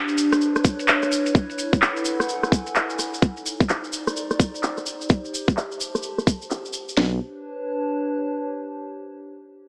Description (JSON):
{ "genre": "UK garage, two-step garage", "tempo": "128 BPM", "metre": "4/4", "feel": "swing 63% on 16ths", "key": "unclear", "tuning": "A4 = 440 Hz", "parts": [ { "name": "warbly tape-like pad", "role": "texture", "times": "0.0-8.8 s", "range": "D4 to Bb5", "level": "-29 LUFS", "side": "equal", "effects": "chorus, built-in reverb, sidechain pumping" }, { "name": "garage drum kit", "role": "drums", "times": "0.1-7.0 s", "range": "handclaps, hi-hat, rim click", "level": "-26 LUFS", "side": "equal", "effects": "low-pass filter on hats, low-pass filter on snare" }, { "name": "cabasa", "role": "percussion", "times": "0.1-7.0 s", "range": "none", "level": "-34 LUFS", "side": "equal", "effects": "none" }, { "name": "garage drum kit", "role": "drums", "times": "0.6-7.1 s", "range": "hi-hat, kick drum, snare drum", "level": "-21 LUFS", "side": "equal", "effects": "none" }, { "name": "rubbery square bass", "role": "bass", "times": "7.0-7.2 s", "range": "B1", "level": "-25 LUFS", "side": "equal", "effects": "none" } ], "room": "wet lush hall reverb, RT60 2.1 s", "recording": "dreamy mix soaked in reverb, small speaker sound", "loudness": "-24 LUFS", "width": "mono", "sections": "0.0-7.0 A section; 7.0-8.8 B section", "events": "fade-out on ambient pad 0.0-7.0; filter sweep on drum 0.0-7.0", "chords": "0.0 Bm9; 1.1 F#m9; 3.2 Cm9; 4.9 Am7; 7.0 Bm9", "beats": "0.41 0.88 | 1.35 1.82 2.29 2.75 | 3.22 3.69 4.16 4.63 | 5.10 5.57 6.04 6.50 | 6.97 7.44 7.91 8.38" }